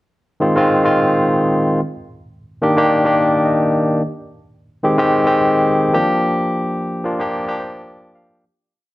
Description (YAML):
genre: disco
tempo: 108 BPM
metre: 4/4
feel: swing 56% on 16ths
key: unclear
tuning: A4 = 439 Hz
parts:
  - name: barky tine electric piano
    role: solo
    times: 0.4-8.5 s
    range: Eb3 to F5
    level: -14 LUFS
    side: equal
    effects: none
room: moderate large studio reverb, RT60 1.0 s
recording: dark, warm production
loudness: -14 LUFS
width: side -17 dB against mid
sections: 0.0-8.4 verse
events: tine electric piano fill 2.3-4.0, 7.3-8.4; fade-out 6.2-8.4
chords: 0.0 Fm7; 1.8 Ebmaj7; 4.0 Abmaj7; 5.9 Gm7